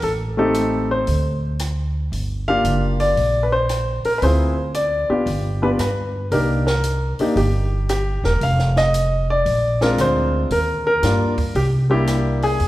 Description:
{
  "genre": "jazz piano trio",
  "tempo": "114 BPM",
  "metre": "4/4",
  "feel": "swing 66% on 8ths",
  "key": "unclear",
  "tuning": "A4 = 441 Hz",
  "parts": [
    { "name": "warm baby grand piano", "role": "melody", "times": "0.0-12.7 s", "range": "G3 to F5", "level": "-19 LUFS", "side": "left 1 dB", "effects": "none" },
    { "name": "upright bass", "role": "bass", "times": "0.0-12.7 s", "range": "Fb1 to G2", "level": "-21 LUFS", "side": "equal", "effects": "none" },
    { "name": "compact cocktail drum kit", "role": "drums", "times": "0.0-12.7 s", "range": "hi-hat, kick drum, rim click, snare drum", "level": "-31 LUFS", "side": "right 1 dB", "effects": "none" }
  ],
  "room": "wet recital hall reverb, RT60 1.8 s",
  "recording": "recorded in a church or concert hall",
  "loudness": "-17 LUFS",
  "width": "side -16 dB against mid",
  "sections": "0.0-12.7 A section",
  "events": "none",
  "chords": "0.0 Am7b5; 1.1 Csus2/D; 2.1 Gm7; 4.2 Dm7b5; 5.3 G; 6.3 Cm7; 8.4 N.C.; 9.5 Bb7; 10.5 Ebmaj7; 11.6 C7"
}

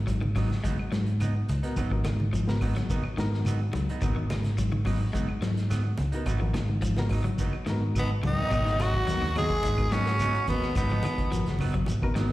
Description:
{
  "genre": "afrobeat",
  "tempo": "107 BPM",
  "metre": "4/4",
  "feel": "straight",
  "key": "G# dorian",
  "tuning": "A4 = 441 Hz",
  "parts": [
    { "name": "bright reed electric piano", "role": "accompaniment", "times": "0.0-12.3 s", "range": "B3 to A#4", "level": "-38 LUFS", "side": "left 3 dB", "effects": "fast tremolo, slapback echo" },
    { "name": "fingered electric bass", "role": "bass", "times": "0.0-12.3 s", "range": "F#1 to G#2", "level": "-28 LUFS", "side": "equal", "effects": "none" },
    { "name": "electric guitar at the edge of break-up", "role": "arpeggios", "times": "0.1-12.3 s", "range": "B2 to G#3", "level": "-35 LUFS", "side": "left 4 dB", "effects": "spring reverb, slapback echo" },
    { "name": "electric guitar through a small old amp", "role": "stabs", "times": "0.1-12.3 s", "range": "F#3 to D#4", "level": "-38 LUFS", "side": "right 6 dB", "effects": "slapback echo" },
    { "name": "vintage drum kit", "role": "drums", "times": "0.1-12.3 s", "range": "crash cymbal, hi-hat, kick drum, snare drum, toms", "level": "-32 LUFS", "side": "equal", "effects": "none" },
    { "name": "congas", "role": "percussion", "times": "0.1-12.0 s", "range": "none", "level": "-36 LUFS", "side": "equal", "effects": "slapback echo" },
    { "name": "shekere", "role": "percussion", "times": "0.1-12.3 s", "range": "none", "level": "-37 LUFS", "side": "right 1 dB", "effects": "none" },
    { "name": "claves", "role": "percussion", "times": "0.4-12.2 s", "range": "none", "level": "-47 LUFS", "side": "left 2 dB", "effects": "slapback echo" },
    { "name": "raspy tenor saxophone", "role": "melody", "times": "8.0-11.6 s", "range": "B3 to G#4", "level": "-29 LUFS", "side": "equal", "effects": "slapback echo" },
    { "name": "bright trombone", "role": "second line", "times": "8.0-11.6 s", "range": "B2 to G#3", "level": "-38 LUFS", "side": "right 2 dB", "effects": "slapback echo" }
  ],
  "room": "small room reverb",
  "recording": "live gig heard through the venue's PA, recital hall reverb",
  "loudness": "-25 LUFS",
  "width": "side -16 dB against mid",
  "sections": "0.0-8.5 A section; 8.5-12.3 B section",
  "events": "drum fill 8.0-8.5",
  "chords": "0.0 G#m7"
}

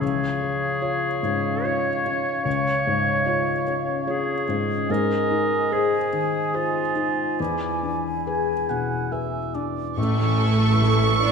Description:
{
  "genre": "cinematic",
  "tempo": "69-75 BPM",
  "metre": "3/4",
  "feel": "rubato",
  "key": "unclear",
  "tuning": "A4 = 440 Hz",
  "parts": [
    { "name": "bright clarinet", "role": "second line", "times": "0.0-11.3 s", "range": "E4 to C#5", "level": "-27 LUFS", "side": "equal", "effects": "none" },
    { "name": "mellow hollow concert flute", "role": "second line", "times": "0.0-11.3 s", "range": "E#5 to E6", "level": "-30 LUFS", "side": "right 1 dB", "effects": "none" },
    { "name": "mellow oboe", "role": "second line", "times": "0.0-11.3 s", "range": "C#5 to C#6", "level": "-30 LUFS", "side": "right 3 dB", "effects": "none" },
    { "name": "felt-muted upright piano", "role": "accompaniment", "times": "0.0-11.3 s", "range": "A1 to C#5", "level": "-26 LUFS", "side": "left 1 dB", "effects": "none" },
    { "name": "concert harp", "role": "arpeggios", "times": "0.0-11.3 s", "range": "E2 to A5", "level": "-30 LUFS", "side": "left 7 dB", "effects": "none" },
    { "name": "rich studio violin section", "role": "melody", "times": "10.0-11.3 s", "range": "C#6", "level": "-27 LUFS", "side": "right 3 dB", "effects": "none" },
    { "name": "rich symphonic violin section", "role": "second line", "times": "10.0-11.3 s", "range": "A4 to D5", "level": "-30 LUFS", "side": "left 1 dB", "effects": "none" },
    { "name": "rich symphonic viola section", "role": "accompaniment", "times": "10.0-11.3 s", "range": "E3 to A4", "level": "-30 LUFS", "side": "right 4 dB", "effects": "none" },
    { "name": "dark French horn section", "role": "sustained chords", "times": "10.0-11.3 s", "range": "A3 to D4", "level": "-31 LUFS", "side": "left 3 dB", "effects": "none" },
    { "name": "clear symphonic cello section", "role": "bass", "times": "10.0-11.3 s", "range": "A3 to D4", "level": "-27 LUFS", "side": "right 4 dB", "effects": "none" },
    { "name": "rich symphonic double bass section", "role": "bass", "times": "10.0-11.3 s", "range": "A1", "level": "-24 LUFS", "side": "right 4 dB", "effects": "none" }
  ],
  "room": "wet scoring stage reverb, RT60 1.7 s",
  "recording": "none",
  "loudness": "-21 LUFS",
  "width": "side -5 dB against mid",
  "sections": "0.0-10.0 A section; 10.0-11.3 B section",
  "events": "none",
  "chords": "0.0 C#; 4.9 G#; 7.4 E7; 10.0 A"
}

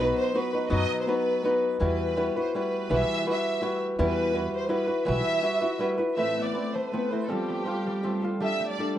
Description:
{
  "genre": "mexican folk, mariachi",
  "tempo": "164 BPM",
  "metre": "3/4",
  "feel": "straight",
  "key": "E harmonic minor",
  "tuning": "A4 = 441 Hz",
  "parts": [
    { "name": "warm studio violin section", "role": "melody", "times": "0.0-9.0 s", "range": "G4 to E5", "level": "-30 LUFS", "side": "right 1 dB", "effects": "none" },
    { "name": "flamenco guitar", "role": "accompaniment", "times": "0.0-9.0 s", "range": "A2 to B4", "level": "-26 LUFS", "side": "left 1 dB", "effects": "none" },
    { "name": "upright bass", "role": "bass", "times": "0.0-5.2 s", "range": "B1 to F#2", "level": "-29 LUFS", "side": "equal", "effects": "none" },
    { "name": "concert harp", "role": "arpeggios", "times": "6.2-9.0 s", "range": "G3 to F4", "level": "-32 LUFS", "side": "right 2 dB", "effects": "none" }
  ],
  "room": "light reverb, small room ambience",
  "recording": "rough home demo mix, nothing above 10.4 kHz",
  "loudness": "-24 LUFS",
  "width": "side -11 dB against mid",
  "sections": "0.0-6.2 A section; 6.2-9.0 B section",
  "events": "none",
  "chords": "0.0 B; 1.8 Emadd9; 6.2 Amadd9; 7.3 Fadd9; 8.4 Gsus2"
}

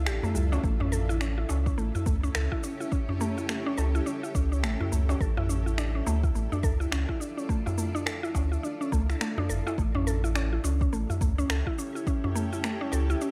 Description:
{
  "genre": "organic downtempo",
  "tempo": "105 BPM",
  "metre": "4/4",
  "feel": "swing 60% on 16ths",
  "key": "unclear",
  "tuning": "A4 = 440 Hz",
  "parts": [
    { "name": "granular cloud pad", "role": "sustained chords", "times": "0.0-13.3 s", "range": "C#4 to E5", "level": "-40 LUFS", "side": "equal", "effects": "built-in reverb, sidechain pumping" },
    { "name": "mallet-like synth pluck", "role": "arpeggios", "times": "0.0-13.3 s", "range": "G3 to A4", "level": "-35 LUFS", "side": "equal", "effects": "chorus, tape echo" },
    { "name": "warm sub bass", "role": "bass", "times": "0.0-13.1 s", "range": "G1 to D2", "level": "-30 LUFS", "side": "equal", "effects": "none" },
    { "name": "electronic finger snaps and shaker", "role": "drums", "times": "0.1-13.3 s", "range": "none", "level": "-39 LUFS", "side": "equal", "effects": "overdrive" },
    { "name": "darbuka", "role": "percussion", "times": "0.2-13.1 s", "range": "none", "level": "-36 LUFS", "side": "equal", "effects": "none" },
    { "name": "electronic kick drum", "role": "drums", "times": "0.6-12.2 s", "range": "none", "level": "-32 LUFS", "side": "equal", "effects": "overdrive" }
  ],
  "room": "light reverb, digital ambience",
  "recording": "none",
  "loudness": "-28 LUFS",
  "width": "mono",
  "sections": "0.0-13.3 A section",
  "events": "none",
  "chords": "0.0 Dmadd9/A; 0.6 A7; 5.2 Dmadd9/A; 9.8 A7"
}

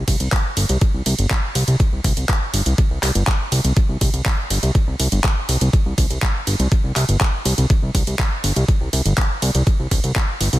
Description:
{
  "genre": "progressive house",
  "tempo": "122 BPM",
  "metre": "4/4",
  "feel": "straight",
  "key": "unclear",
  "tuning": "A4 = 440 Hz",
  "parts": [
    { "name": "fat analog bass", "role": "bass", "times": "0.0-10.6 s", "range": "G1 to C2", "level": "-18 LUFS", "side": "equal", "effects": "sidechain pumping" },
    { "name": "electronic kick drum", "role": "drums", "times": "0.1-10.3 s", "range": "none", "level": "-18 LUFS", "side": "equal", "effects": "overdrive" },
    { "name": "pop drum kit", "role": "drums", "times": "0.1-10.6 s", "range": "handclaps, hi-hat, ride cymbal", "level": "-23 LUFS", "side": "right 1 dB", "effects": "overdrive" }
  ],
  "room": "little or no reverb",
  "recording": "dense, heavily limited modern master",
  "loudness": "-16 LUFS",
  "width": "side -16 dB against mid",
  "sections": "0.0-10.6 A section",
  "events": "none",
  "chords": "none"
}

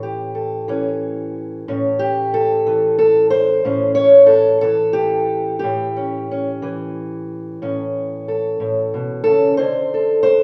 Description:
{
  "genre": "acoustic country blues, solo or duo",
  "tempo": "61 BPM (dotted quarters)",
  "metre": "12/8",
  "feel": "straight",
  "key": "A mixolydian",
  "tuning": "A4 = 442 Hz",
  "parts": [
    { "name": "fingerpicked steel-string acoustic guitar", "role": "solo", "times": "0.0-10.4 s", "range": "A2 to C#5", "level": "-18 LUFS", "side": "equal", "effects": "none" }
  ],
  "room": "wet large studio reverb, RT60 1.2 s",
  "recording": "band playing live in one room",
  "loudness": "-17 LUFS",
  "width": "mono",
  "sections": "0.0-10.4 A section",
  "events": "none",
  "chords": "0.0 A7; 9.6 D7(no3)"
}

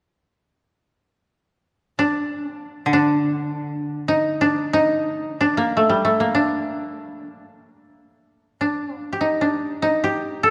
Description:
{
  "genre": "japanese traditional, Japanese chamber music",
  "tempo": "free time",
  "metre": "none",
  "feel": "none",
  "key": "D miyako bushi",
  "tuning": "A4 = 440 Hz",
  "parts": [
    { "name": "koto", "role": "melody", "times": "2.0-10.5 s", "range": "G3 to A4", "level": "-22 LUFS", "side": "equal", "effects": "none" },
    { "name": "koto", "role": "accompaniment", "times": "2.9-5.8 s", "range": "D3", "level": "-26 LUFS", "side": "equal", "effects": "none" }
  ],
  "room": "wet church reverb, RT60 2.9 s",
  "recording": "dark, warm production",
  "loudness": "-21 LUFS",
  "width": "mono",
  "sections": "1.1-9.0 A section; 9.0-10.5 B section",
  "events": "none",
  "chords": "none"
}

